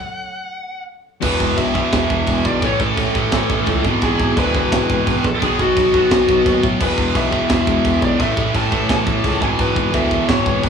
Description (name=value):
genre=heavy metal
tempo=172 BPM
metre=4/4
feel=straight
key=unclear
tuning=A4 = 440 Hz
part: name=high-gain lead guitar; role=melody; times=0.0-10.7 s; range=F#4 to A5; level=-21 LUFS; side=left 1 dB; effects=distortion
part: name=chorused pulse-width pad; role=sustained chords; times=1.2-10.7 s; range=D#3 to C#5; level=-30 LUFS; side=right 1 dB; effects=none
part: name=distorted electric guitar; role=riff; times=1.2-10.7 s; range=E2 to B3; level=-23 LUFS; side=left 8 dB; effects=overdrive
part: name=scooped high-gain guitar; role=riff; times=1.2-10.7 s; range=E2 to B3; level=-20 LUFS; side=right 4 dB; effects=distortion
part: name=picked electric bass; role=bass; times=1.2-10.7 s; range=E1 to A2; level=-23 LUFS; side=right 1 dB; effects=none
part: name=tight metal drum kit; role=drums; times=1.2-10.7 s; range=china cymbal, crash cymbal, kick drum, snare drum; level=-21 LUFS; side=equal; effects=none
room=moderate large studio reverb, RT60 1.2 s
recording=band playing live in one room, small room ambience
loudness=-14 LUFS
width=side -6 dB against mid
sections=0.0-1.2 A section; 1.2-10.7 B section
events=stop 0.0-1.2; half time 1.2-10.7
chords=0.0 N.C.; 1.2 E; 2.6 A; 3.8 E/G#; 5.4 B; 6.8 E; 8.2 A; 9.4 E/G#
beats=0.18 0.53 0.88 | 1.23 1.58 1.93 2.28 | 2.63 2.98 3.33 3.67 | 4.02 4.37 4.72 5.07 | 5.42 5.76 6.11 6.46 | 6.81 7.16 7.50 7.85 | 8.20 8.55 8.89 9.24 | 9.59 9.94 10.29 10.63